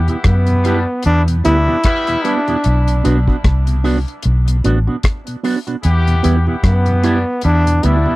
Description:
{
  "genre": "roots reggae",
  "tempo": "75 BPM",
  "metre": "4/4",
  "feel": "swing 58% on 16ths",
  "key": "E minor",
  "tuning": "A4 = 440 Hz",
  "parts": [
    { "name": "clear horn section", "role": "second line", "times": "0.0-8.2 s", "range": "G3 to G4", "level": "-25 LUFS", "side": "left 3 dB", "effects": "tape echo" },
    { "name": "vintage muted fingered electric bass", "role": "bass", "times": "0.0-8.1 s", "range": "A1 to F#2", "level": "-14 LUFS", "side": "equal", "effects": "none" },
    { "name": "electric guitar with an envelope filter", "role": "accompaniment", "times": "0.1-8.1 s", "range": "B3 to G4", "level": "-22 LUFS", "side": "right 5 dB", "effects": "tape echo" },
    { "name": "mellow tonewheel organ", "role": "accompaniment", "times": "0.1-8.2 s", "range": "E2 to E4", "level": "-23 LUFS", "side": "left 1 dB", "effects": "slow rotary speaker" },
    { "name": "deep reggae drum kit", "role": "drums", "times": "0.1-8.1 s", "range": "hi-hat, kick drum, rim click", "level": "-19 LUFS", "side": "equal", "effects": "none" },
    { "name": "brilliant trombone", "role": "melody", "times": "0.3-8.2 s", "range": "B3 to E4", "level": "-19 LUFS", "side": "equal", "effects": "tape echo" }
  ],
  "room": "little or no reverb",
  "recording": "dry, close 1970s-style studio recording",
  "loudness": "-12 LUFS",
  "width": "side -19 dB against mid",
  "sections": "0.0-8.2 A section",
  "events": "none",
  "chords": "0.0 Em; 2.6 Bm; 5.8 Em",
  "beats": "0.25 1.05 1.85 | 2.65 3.44 4.24 5.04 | 5.84 6.64 7.44"
}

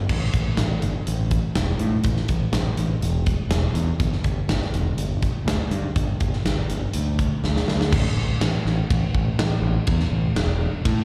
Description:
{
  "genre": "classic rock",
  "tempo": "123 BPM",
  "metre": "4/4",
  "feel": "straight",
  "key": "unclear",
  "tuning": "A4 = 440 Hz",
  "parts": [
    { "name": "growling fingered electric bass", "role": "bass", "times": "0.0-11.0 s", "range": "E1 to A2", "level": "-25 LUFS", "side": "equal", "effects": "overdrive" },
    { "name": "big rock drum kit", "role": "drums", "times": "0.1-11.0 s", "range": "crash cymbal, hi-hat, kick drum, ride cymbal, snare drum", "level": "-27 LUFS", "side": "equal", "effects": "none" }
  ],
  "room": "little or no reverb",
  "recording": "live gig heard through the venue's PA, recital hall reverb",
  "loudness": "-23 LUFS",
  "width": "mono",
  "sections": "0.1-7.9 A section; 7.9-11.0 B section",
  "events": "drum fill 7.4-7.9",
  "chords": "none",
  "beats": "| 0.10 0.58 1.07 1.56 | 2.05 2.54 3.03 3.52 | 4.00 4.49 4.98 5.47 | 5.96 6.45 6.94 7.43 | 7.92 8.41 8.89 9.38 | 9.87 10.36 10.85"
}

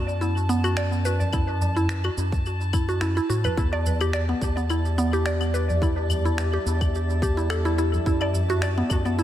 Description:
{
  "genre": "organic downtempo",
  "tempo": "107 BPM",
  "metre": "4/4",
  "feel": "swing 54% on 16ths",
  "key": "E minor",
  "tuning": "A4 = 437 Hz",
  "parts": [
    { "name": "mallet-like synth pluck", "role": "arpeggios", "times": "0.0-9.2 s", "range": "B3 to D5", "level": "-26 LUFS", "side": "equal", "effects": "chorus, analog delay" },
    { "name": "round analog bass", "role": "bass", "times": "0.0-9.2 s", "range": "E2 to A2", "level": "-24 LUFS", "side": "equal", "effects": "sidechain pumping" },
    { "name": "drifting glass-harmonics texture", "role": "texture", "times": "0.0-9.2 s", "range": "A5", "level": "-36 LUFS", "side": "right 1 dB", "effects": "chorus, built-in reverb" },
    { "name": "electronic shaker, claves and finger snaps", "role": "drums", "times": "0.1-9.2 s", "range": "none", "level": "-34 LUFS", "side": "left 2 dB", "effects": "analog delay" },
    { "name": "tabla", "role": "percussion", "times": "0.5-9.0 s", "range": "none", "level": "-34 LUFS", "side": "right 1 dB", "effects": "analog delay" },
    { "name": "electronic kick drum", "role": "drums", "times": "1.3-9.0 s", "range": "none", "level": "-25 LUFS", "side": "equal", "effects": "none" },
    { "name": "granular cloud pad", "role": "sustained chords", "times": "4.7-9.2 s", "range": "F#4 to E5", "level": "-32 LUFS", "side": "left 1 dB", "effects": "built-in reverb, sidechain pumping" }
  ],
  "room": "light reverb",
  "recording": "echo-heavy mix",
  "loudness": "-21 LUFS",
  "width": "side -12 dB against mid",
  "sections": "0.0-9.2 A section",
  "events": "none",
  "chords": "0.0 F#m7; 3.6 Em7; 8.1 F#m7",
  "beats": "0.21 0.77 | 1.33 1.89 2.46 3.02 | 3.58 4.14 4.70 5.26 | 5.82 6.38 6.94 7.50 | 8.06 8.62 9.18"
}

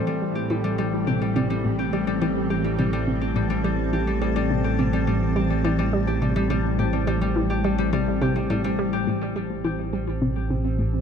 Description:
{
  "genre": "ambient, sequencer-driven space music",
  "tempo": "105 BPM",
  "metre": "4/4",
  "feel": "straight",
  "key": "A minor",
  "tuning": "A4 = 440 Hz",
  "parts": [
    { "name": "evolving wavetable pad", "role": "sustained chords", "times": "0.0-11.0 s", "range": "A2 to A5", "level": "-27 LUFS", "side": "right 2 dB", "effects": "chorus, built-in reverb" },
    { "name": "concert harp", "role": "arpeggios", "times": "0.0-11.0 s", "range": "G3 to G4", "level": "-27 LUFS", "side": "left 5 dB", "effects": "auto-pan, tape echo" },
    { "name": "analog pluck", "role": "riff", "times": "0.0-11.0 s", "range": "A2 to G3", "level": "-27 LUFS", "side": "equal", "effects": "chorus, tape echo" },
    { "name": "analog drone", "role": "bass", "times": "0.7-11.0 s", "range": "A1", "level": "-28 LUFS", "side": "right 1 dB", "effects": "chorus" }
  ],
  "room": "moderate plate reverb, RT60 3.3 s",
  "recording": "none",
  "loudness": "-21 LUFS",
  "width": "side -7 dB against mid",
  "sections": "0.0-9.1 A section; 9.1-11.0 B section",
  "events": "filter sweep on synth arpeggio sound 0.0-9.1, 9.1-11.0",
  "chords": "0.0 Am7",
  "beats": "0.50 1.07 1.64 | 2.21 2.79 3.36 3.93 | 4.50 5.07 5.64 6.21 | 6.79 7.36 7.93 8.50 | 9.07 9.64 10.21 10.79"
}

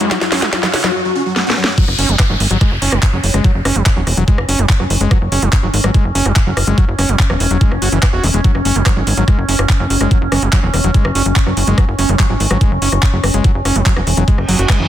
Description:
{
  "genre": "psychedelic trance",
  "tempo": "144 BPM",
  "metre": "4/4",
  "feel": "straight",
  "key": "unclear",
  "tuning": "A4 = 439 Hz",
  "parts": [
    { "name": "dense compressed supersaw", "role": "melody", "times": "0.0-1.7 s", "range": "F#3 to F#4", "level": "-22 LUFS", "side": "right 1 dB", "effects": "phaser, sidechain pumping, digital delay" },
    { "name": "overtone-sweeping drone", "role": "sustained chords", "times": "0.0-14.9 s", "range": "C#4", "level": "-23 LUFS", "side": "equal", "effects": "chorus, built-in reverb, sidechain pumping" },
    { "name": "overdriven acid bass", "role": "riff", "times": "0.0-14.9 s", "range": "E3 to F#4", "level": "-20 LUFS", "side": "moving between left 4 dB and right 4 dB", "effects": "distortion, auto-pan, sidechain pumping, digital delay" },
    { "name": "tight sequencer bass", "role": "bass", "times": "0.0-14.9 s", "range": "E1 to G#1", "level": "-16 LUFS", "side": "equal", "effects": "tube saturation, high-pass filter" },
    { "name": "garage drum kit", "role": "drums", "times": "0.0-14.8 s", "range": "crash cymbal, handclaps, hi-hat, rim click, snare drum", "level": "-18 LUFS", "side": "equal", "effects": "soft clipping on snare" },
    { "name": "riser, downlifter and reverse cymbal", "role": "sound effects", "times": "0.0-5.1, 14.4-14.9 s", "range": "none", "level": "-23 LUFS", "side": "left 2 dB", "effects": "none" },
    { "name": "ethereal airy pad", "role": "texture", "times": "0.0-0.9 s", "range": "C#4 to C#6", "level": "-31 LUFS", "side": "left 1 dB", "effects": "none" },
    { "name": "electronic kick drum", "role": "drums", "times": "0.1-14.8 s", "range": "none", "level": "-13 LUFS", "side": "equal", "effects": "high-pass filter on kick" }
  ],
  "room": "little or no reverb",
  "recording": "dense, heavily limited modern master",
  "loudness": "-11 LUFS",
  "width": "side -12 dB against mid",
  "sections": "0.0-1.8 A section; 1.8-14.9 B section",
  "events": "build-up 0.0-1.8; drum fill 0.0-0.9, 1.4-1.8; riser 0.0-0.9; drop 1.8-14.9; reverse cymbal 14.4-14.9",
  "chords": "0.0 F#5",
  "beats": "| 0.11 0.53 0.94 1.36 | 1.78 2.19 2.61 3.03 | 3.44 3.86 4.28 4.69 | 5.11 5.53 5.94 6.36 | 6.78 7.19 7.61 8.03 | 8.44 8.86 9.28 9.69 | 10.11 10.53 10.94 11.36 | 11.78 12.19 12.61 13.03 | 13.44 13.86 14.28 14.69"
}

